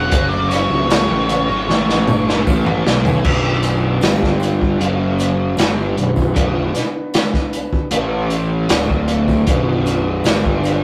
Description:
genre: psychedelic rock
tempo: 77 BPM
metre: 4/4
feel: straight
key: B minor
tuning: A4 = 443 Hz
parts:
  - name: octave-fuzz lead guitar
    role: melody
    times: 0.0-2.4 s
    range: C#5 to F#5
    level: -23 LUFS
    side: equal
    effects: distortion
  - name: overdriven combo organ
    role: sustained chords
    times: 0.0-10.8 s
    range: E3 to D5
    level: -29 LUFS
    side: equal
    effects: none
  - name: cranked stack guitar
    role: riff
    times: 0.0-10.8 s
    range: B1 to A4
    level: -24 LUFS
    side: equal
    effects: overdrive, rotary speaker
  - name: fuzz picked electric bass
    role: bass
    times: 0.0-10.8 s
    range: B0 to B1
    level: -21 LUFS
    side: equal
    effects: overdrive
  - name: crunchy breakbeat drum kit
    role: drums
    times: 0.1-10.8 s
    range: crash cymbal, hi-hat, kick drum, snare drum, toms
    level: -20 LUFS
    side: equal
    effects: none
  - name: tambourine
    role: percussion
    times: 0.1-10.8 s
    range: none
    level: -48 LUFS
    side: equal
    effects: none
room: moderate studio reverb, RT60 0.6 s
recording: rough rehearsal-room recording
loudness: -17 LUFS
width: mono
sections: 0.0-3.2 A section; 3.2-10.8 B section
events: lead electric guitar solo 0.0-3.2; drum fill 1.7-3.2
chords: 0.1 F#m; 1.7 A; 3.2 Bm; 4.0 G5; 4.8 F#5; 5.6 Bm; 7.9 A5; 8.7 D5; 9.5 Bm; 10.3 G5

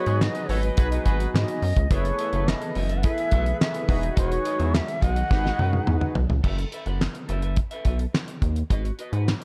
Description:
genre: early-eighties boogie funk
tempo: 106 BPM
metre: 4/4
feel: straight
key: F# dorian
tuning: A4 = 440 Hz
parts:
  - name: breathy mellow shakuhachi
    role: melody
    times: 0.0-6.2 s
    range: B4 to F#5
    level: -32 LUFS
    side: equal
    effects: slapback echo
  - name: bright horn section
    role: second line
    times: 0.0-1.3 s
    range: F#4 to D#5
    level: -38 LUFS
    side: equal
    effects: none
  - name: chorused polysynth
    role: accompaniment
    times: 0.0-6.2 s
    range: D#4 to B4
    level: -34 LUFS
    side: equal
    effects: none
  - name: chorused pulse-width pad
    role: sustained chords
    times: 0.0-6.4 s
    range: D#3 to G#5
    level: -40 LUFS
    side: equal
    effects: none
  - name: electric guitar through a small old amp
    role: riff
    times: 0.0-9.4 s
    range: F#4 to F#5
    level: -39 LUFS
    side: equal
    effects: lush chorus
  - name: rubbery square bass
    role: bass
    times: 0.1-9.3 s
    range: E1 to G#2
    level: -27 LUFS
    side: equal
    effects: none
  - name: damped 70s drum kit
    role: drums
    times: 0.1-9.4 s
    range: crash cymbal, handclaps, hi-hat, kick drum, snare drum, toms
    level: -27 LUFS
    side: equal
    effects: gated reverb
room: studio reverb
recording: none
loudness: -24 LUFS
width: mono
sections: 0.0-6.4 A section; 6.4-9.4 B section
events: drum fill 5.3-6.4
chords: 0.0 G#m7; 1.9 F#m11; 3.9 Emaj9; 6.4 F#m7; 8.7 G#m7

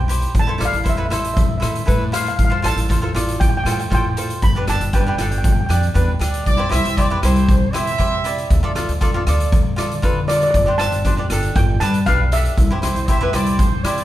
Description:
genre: calypso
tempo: 118 BPM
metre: 4/4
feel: straight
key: C major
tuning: A4 = 440 Hz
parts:
  - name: steel pan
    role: melody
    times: 0.0-5.8, 10.3-14.0 s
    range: D5 to B5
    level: -22 LUFS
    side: equal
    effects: none
  - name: upright bass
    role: bass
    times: 0.0-14.0 s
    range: G1 to D3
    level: -20 LUFS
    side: equal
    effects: none
  - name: cavaquinho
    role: accompaniment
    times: 0.1-14.0 s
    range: D4 to D5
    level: -24 LUFS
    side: equal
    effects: none
  - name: street-band drum kit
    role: drums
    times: 0.1-14.0 s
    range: hi-hat, kick drum, rim click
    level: -19 LUFS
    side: equal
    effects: none
  - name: warm horn section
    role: second line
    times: 6.5-8.8, 12.8-14.0 s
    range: C5 to E5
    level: -24 LUFS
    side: right 3 dB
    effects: none
room: light reverb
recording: band playing live in one room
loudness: -15 LUFS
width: side -14 dB against mid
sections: 0.0-14.0 A section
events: none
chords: 0.3 Am; 2.4 Fadd9/A; 4.4 G; 6.5 C; 8.5 Dm; 10.5 Gsus4; 11.6 Gadd9; 12.6 Cadd9

